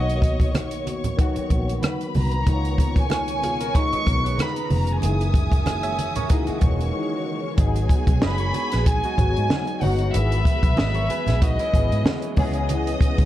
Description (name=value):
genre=lush 1970s-style soul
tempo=94 BPM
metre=4/4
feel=swing 54% on 16ths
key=G# minor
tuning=A4 = 441 Hz
part: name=warm chamber violin section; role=melody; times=0.0-12.4 s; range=D#5 to C#6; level=-28 LUFS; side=equal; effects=none
part: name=warm studio string section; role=second line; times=0.0-13.3 s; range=G#4 to D#6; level=-34 LUFS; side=equal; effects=none
part: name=barky tine electric piano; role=accompaniment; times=0.0-13.3 s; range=D#3 to D#5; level=-29 LUFS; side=left 3 dB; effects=ensemble chorus
part: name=direct-recorded clean electric guitar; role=riff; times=0.0-12.3 s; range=C#4 to E5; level=-34 LUFS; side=right 6 dB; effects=analog chorus
part: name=vintage muted fingered electric bass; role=bass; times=0.0-13.3 s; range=E1 to G#2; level=-24 LUFS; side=equal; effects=none
part: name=compact cocktail drum kit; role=drums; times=0.1-13.3 s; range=hi-hat, kick drum, rim click, snare drum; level=-22 LUFS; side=equal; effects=none
part: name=congas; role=percussion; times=0.5-12.9 s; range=none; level=-29 LUFS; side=right 3 dB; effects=none
part: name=soft string machine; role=sustained chords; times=2.5-13.3 s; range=B2 to G#4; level=-34 LUFS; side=equal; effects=ensemble chorus
room=small room ambience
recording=dark, warm production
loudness=-19 LUFS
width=side -14 dB against mid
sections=0.0-7.6 A section; 7.6-13.3 B section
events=break 6.9-7.6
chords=0.0 Bmaj7; 2.5 C#13; 5.0 F#13; 7.6 G#m7; 10.1 Emaj7/G#; 12.4 C#m7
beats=0.54 1.18 1.82 | 2.46 3.11 3.75 4.39 | 5.03 5.67 6.31 6.95 | 7.58 8.22 8.86 9.50 | 10.14 10.78 11.42 12.05 | 12.69